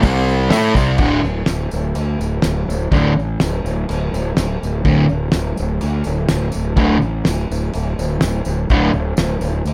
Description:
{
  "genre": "garage rock duo or trio",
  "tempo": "125 BPM",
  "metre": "4/4",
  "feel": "straight",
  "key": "unclear",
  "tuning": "A4 = 440 Hz",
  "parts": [
    { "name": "fuzz guitar", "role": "riff", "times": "0.0-8.9 s", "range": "D2 to A4", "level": "-18 LUFS", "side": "equal", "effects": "distortion" },
    { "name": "fuzz fingered electric bass", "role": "bass", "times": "0.0-9.7 s", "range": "D1 to A2", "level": "-22 LUFS", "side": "equal", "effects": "overdrive" },
    { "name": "cloth-damped thuddy drum kit", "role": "drums", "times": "0.0-9.7 s", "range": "crash cymbal, hi-hat, kick drum, snare drum", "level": "-24 LUFS", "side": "equal", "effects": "none" },
    { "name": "tambourine", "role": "percussion", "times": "0.0-9.7 s", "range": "none", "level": "-40 LUFS", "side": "equal", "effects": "none" }
  ],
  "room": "light reverb",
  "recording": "none",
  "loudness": "-18 LUFS",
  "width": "mono",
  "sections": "0.0-1.0 A section; 1.0-9.7 B section",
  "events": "none",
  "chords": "0.0 C5; 1.0 D5"
}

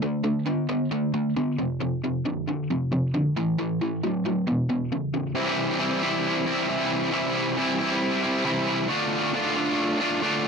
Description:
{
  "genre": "rock",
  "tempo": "135 BPM",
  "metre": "4/4",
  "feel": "straight",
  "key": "unclear",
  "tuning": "A4 = 439 Hz",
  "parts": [
    { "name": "cranked stack guitar", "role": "solo", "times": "0.0-10.5 s", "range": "E2 to F4", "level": "-23 LUFS", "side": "equal", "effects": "overdrive, harmonic tremolo" }
  ],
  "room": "little or no reverb",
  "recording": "dry, close 1970s-style studio recording",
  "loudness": "-23 LUFS",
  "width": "side -5 dB against mid",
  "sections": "0.0-5.4 A section; 5.4-10.5 B section",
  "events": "none",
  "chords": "0.0 D5; 1.6 F5; 3.4 A5; 4.5 E5; 5.4 C; 8.9 Dm"
}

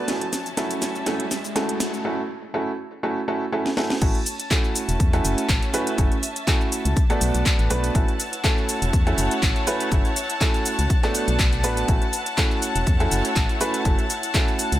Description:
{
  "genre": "piano house",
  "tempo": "122 BPM",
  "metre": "4/4",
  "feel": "swing 54% on 16ths",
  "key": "A major",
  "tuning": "A4 = 440 Hz",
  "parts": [
    { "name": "warm studio violin section", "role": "sustained chords", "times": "0.0-14.8 s", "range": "A5", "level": "-31 LUFS", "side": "left 1 dB", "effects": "sidechain pumping" },
    { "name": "clear upright piano", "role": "riff", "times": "0.0-14.8 s", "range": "A3 to B4", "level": "-25 LUFS", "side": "right 2 dB", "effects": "sidechain pumping" },
    { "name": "organ-like FM bass", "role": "bass", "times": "0.0-14.8 s", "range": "E1 to E2", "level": "-24 LUFS", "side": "equal", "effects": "sidechain pumping, high-pass filter" },
    { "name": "riser", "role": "sound effects", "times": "0.0-2.0 s", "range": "none", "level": "-34 LUFS", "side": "left 2 dB", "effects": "none" },
    { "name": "warm symphonic string section", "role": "texture", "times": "0.0-14.8 s", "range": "B3 to A5", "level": "-33 LUFS", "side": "equal", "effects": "sidechain pumping" },
    { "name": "house drum kit", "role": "drums", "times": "0.1-14.8 s", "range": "crash cymbal, handclaps, hi-hat, shaker, snare drum", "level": "-26 LUFS", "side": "equal", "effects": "none" },
    { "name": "electronic kick drum", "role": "drums", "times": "4.0-14.5 s", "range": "none", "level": "-21 LUFS", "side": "equal", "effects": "none" }
  ],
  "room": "light reverb",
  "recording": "none",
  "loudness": "-20 LUFS",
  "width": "side -14 dB against mid",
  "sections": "0.0-4.0 A section; 4.0-14.8 B section",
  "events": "build-up 0.0-4.0; drum fill 0.0-2.0, 3.6-4.0; riser 0.0-2.0; drop 4.0-14.8",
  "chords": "0.1 A6; 5.7 F#m7; 7.0 Bm7; 8.0 A6; 9.7 F#m7; 10.9 Bm7; 11.9 A6; 13.6 F#m7"
}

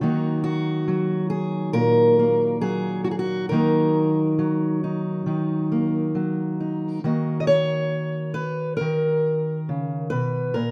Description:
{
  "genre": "folk, solo fingerstyle acoustic guitar",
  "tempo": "68 BPM",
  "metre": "4/4",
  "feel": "rubato",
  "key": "unclear",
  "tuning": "A4 = 443 Hz",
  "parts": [
    { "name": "fingerpicked steel-string acoustic guitar", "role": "solo", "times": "0.0-10.7 s", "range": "A#2 to D#5", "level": "-23 LUFS", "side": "equal", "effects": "none" }
  ],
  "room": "moderate scoring stage reverb, RT60 1.9 s",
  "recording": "none",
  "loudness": "-23 LUFS",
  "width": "mono",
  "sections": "0.0-10.7 A section",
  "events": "none",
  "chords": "0.0 D#m"
}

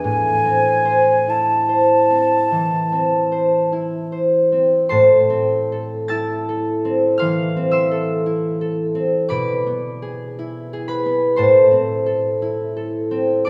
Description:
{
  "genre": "classical, romantic duo for flute and harp",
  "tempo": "48-59 BPM",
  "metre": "4/4",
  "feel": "rubato",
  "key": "A minor",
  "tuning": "A4 = 440 Hz",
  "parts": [
    { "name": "mellow concert flute", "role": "melody", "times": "0.0-3.7 s", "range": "G#5 to A5", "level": "-20 LUFS", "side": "equal", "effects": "none" },
    { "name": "concert harp", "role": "accompaniment", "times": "0.0-13.5 s", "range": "A2 to A6", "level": "-19 LUFS", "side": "equal", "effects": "none" }
  ],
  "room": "wet recital hall reverb, RT60 1.6 s",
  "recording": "recorded in a church or concert hall",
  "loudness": "-18 LUFS",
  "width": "mono",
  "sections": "0.0-4.9 A section; 4.9-13.5 A section",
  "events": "none",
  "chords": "0.0 Am; 9.3 E7/B; 11.4 Am"
}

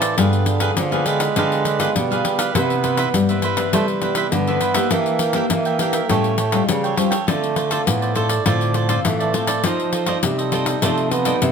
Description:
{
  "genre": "samba and choro",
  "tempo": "101 BPM",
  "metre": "4/4",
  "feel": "straight",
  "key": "unclear",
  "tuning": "A4 = 439 Hz",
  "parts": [
    { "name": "breathy trombone", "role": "second line", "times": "0.0-11.5 s", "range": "D3 to B3", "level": "-23 LUFS", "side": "right 6 dB", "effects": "none" },
    { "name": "cavaquinho", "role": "accompaniment", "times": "0.0-11.4 s", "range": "D4 to G5", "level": "-24 LUFS", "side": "right 5 dB", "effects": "none" },
    { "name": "nylon-string guitar", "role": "accompaniment", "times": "0.0-11.5 s", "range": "G2 to D5", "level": "-24 LUFS", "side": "left 6 dB", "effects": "none" },
    { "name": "pandeiro", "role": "percussion", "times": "0.0-11.5 s", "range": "none", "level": "-24 LUFS", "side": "left 6 dB", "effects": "none" },
    { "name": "nylon-string guitar", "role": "bass", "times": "0.2-11.5 s", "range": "G2 to G3", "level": "-23 LUFS", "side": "equal", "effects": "none" }
  ],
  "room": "light reverb",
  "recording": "close, detailed microphones",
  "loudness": "-17 LUFS",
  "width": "side -6 dB against mid",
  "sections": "0.0-11.5 A section",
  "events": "none",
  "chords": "0.2 G7b9; 2.5 Cmaj9; 4.9 Em7b5; 6.1 A7b13; 7.3 Dm7; 9.6 F13"
}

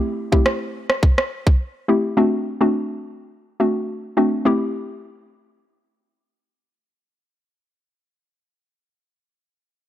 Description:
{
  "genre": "dancehall",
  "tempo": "105 BPM",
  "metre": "4/4",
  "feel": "straight",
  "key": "A dorian",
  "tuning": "A4 = 440 Hz",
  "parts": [
    { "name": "hollow square pluck", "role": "accompaniment", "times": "0.0-8.0 s", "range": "A3 to G4", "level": "-19 LUFS", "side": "left 1 dB", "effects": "chorus" },
    { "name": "island pop drum kit", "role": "drums", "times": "0.3-1.6 s", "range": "kick drum, rim click", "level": "-17 LUFS", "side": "equal", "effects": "none" }
  ],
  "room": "little or no reverb",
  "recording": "dry, gritty hardware recording",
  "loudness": "-18 LUFS",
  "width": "side -12 dB against mid",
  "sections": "0.0-4.5 A section; 4.5-6.7 B section",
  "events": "none",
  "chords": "0.0 Am7; 2.2 D7; 4.5 Am7"
}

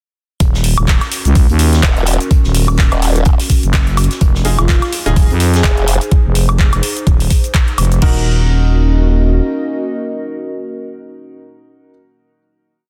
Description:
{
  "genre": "bass house",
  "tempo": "126 BPM",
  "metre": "4/4",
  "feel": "swing 57% on 16ths",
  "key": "Eb dorian",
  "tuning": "A4 = 440 Hz",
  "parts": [
    { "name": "dark analog pad", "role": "sustained chords", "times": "2.3-11.9 s", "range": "Ab3 to F5", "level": "-28 LUFS", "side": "equal", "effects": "chorus, phaser, sidechain pumping" },
    { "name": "growling FM bass", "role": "bass", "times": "0.4-9.4 s", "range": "Eb1 to F2", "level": "-15 LUFS", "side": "equal", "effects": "tube saturation, sidechain pumping" },
    { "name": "big-room dance drum kit", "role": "drums", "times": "0.4-8.1 s", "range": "crash cymbal, handclaps, hi-hat, shaker, woodblock", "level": "-22 LUFS", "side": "equal", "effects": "studio reverb" },
    { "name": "electronic kick drum", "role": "drums", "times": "0.4-8.1 s", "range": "none", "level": "-14 LUFS", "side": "equal", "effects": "studio reverb" },
    { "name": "natural country drum kit", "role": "drums", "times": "0.4-6.0 s", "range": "hi-hat, snare drum", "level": "-31 LUFS", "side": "equal", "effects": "none" },
    { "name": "warbly tape-like pad", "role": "texture", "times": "1.1-12.0 s", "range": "Db4 to C5", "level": "-27 LUFS", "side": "equal", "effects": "chorus, built-in reverb, sidechain pumping" },
    { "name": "formant-sweep wobble bass", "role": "bass", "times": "1.8-6.0 s", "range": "Eb1 to F1", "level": "-17 LUFS", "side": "equal", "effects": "chorus, overdrive, sidechain pumping" },
    { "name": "bright grand piano", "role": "stabs", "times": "4.4-11.9 s", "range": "Eb4 to Bb4", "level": "-28 LUFS", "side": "equal", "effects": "sidechain pumping, dub echo" },
    { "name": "breathy flute-like synth lead", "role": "melody", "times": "4.6-5.9 s", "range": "F4 to Ab4", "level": "-27 LUFS", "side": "equal", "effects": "chorus, dub echo" }
  ],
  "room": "little or no reverb",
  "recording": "dense, heavily limited modern master",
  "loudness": "-13 LUFS",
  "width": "mono",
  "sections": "0.4-8.0 drop; 8.0-11.8 final chord",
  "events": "drop 0.4-8.0",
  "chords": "0.4 Ebm; 4.2 Fm7; 8.0 Ebm"
}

